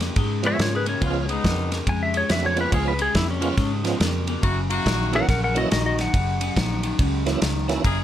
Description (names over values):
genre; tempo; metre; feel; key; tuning
electric blues shuffle; 141 BPM; 4/4; swing 63% on 8ths; Db mixolydian; A4 = 439 Hz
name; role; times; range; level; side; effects
electric guitar through a small old amp; riff; 0.0-8.0 s; Gb2 to Bb3; -28 LUFS; left 4 dB; lush chorus
vintage muted fingered electric bass; bass; 0.0-8.0 s; Gb1 to Ab2; -26 LUFS; equal; none
warm soul drum kit; drums; 0.0-8.0 s; kick drum, ride cymbal, snare drum; -25 LUFS; equal; none
tonewheel organ; accompaniment; 0.4-7.8 s; Fb3 to Gb4; -26 LUFS; right 6 dB; slow rotary speaker, overdrive, chorus vibrato
clean lap steel guitar; melody; 0.5-7.2 s; Db4 to Ab5; -25 LUFS; left 2 dB; none
bright horn section; stabs; 1.0-1.8, 4.4-5.2, 7.8-8.0 s; Bb3 to Ab4; -27 LUFS; left 2 dB; none
room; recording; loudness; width
light reverb; none; -20 LUFS; side -11 dB against mid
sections
0.0-8.0 A section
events
electric slide guitar solo 0.0-8.0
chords
0.0 Db7; 4.4 Gb7